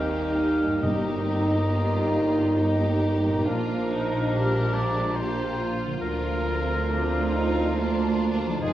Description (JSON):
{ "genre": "classical", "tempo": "69 BPM", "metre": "3/4", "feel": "rubato", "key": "unclear", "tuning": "A4 = 439 Hz", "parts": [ { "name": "warm symphonic violin section", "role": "melody", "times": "0.0-8.7 s", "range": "D4 to Ab4", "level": "-35 LUFS", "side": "left 1 dB", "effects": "none" }, { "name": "bright clarinet", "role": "second line", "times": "0.0-8.7 s", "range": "D4 to F4", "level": "-32 LUFS", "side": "right 2 dB", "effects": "none" }, { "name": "rich studio violin section", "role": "second line", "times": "0.0-8.7 s", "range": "D4 to G4", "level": "-34 LUFS", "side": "left 2 dB", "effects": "none" }, { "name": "small flute group", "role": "second line", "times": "0.0-8.7 s", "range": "Ab5 to C6", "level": "-38 LUFS", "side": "left 1 dB", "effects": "none" }, { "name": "warm oboe", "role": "second line", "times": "0.0-8.7 s", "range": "Ab4 to F5", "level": "-32 LUFS", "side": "equal", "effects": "none" }, { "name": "rich symphonic viola section", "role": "accompaniment", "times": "0.0-8.7 s", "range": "G3 to C4", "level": "-35 LUFS", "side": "right 2 dB", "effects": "none" }, { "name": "warm bassoon", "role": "accompaniment", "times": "0.0-8.7 s", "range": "Eb3 to F3", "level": "-32 LUFS", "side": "right 1 dB", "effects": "none" }, { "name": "dark French horn section", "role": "sustained chords", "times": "0.0-8.7 s", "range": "F3 to F4", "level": "-32 LUFS", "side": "left 2 dB", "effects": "none" }, { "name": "concert harp", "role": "arpeggios", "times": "0.0-8.7 s", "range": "G2 to C5", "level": "-37 LUFS", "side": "left 3 dB", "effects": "none" }, { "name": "mellow tuba", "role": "bass", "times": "0.0-8.7 s", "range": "F1 to Eb2", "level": "-31 LUFS", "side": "right 3 dB", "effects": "none" }, { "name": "warm symphonic cello section", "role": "bass", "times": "0.0-8.7 s", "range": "D2 to Eb3", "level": "-31 LUFS", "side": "right 2 dB", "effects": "none" }, { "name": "warm symphonic double bass section", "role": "bass", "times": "0.0-8.7 s", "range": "F1 to Eb2", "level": "-31 LUFS", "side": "right 1 dB", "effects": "none" }, { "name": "timpani", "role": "percussion", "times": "0.8-2.1 s", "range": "G2", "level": "-33 LUFS", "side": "equal", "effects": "none" } ], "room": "wet scoring stage reverb, RT60 1.6 s", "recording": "worn, warbling old tape, cassette tape, warbly pitch drift, small room ambience", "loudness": "-22 LUFS", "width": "side -13 dB against mid", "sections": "0.0-8.7 A section", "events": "none", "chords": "0.0 Eb; 0.8 Eb/G; 3.5 Bb; 6.0 Bb/D" }